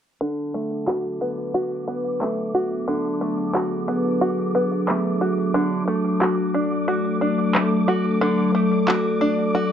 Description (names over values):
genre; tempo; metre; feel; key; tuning
folktronica; 90 BPM; 4/4; straight; B dorian; A4 = 440 Hz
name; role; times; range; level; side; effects
warbly tape-like pad; sustained chords; 1.1-9.7 s; F#3 to D5; -23 LUFS; left 1 dB; chorus, built-in reverb, vintage 12-bit sampler grit
open-back banjo; arpeggios; 0.2-9.7 s; D3 to F#4; -23 LUFS; equal; low-pass filter, tape echo
flickering grainy texture; texture; 1.8-9.7 s; D6; -33 LUFS; right 3 dB; built-in reverb
electronic handclaps; drums; 0.9-9.0 s; none; -24 LUFS; equal; overdrive, studio reverb
room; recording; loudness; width
little or no reverb; dry, close 1970s-style studio recording, low-pass filter; -20 LUFS; side -8 dB against mid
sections
0.2-9.7 A section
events
filter sweep on five-string banjo 0.2-9.7; filter sweep on ambient pad 0.2-9.7; filter sweep 0.2-9.7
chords
0.2 Bm7; 5.5 D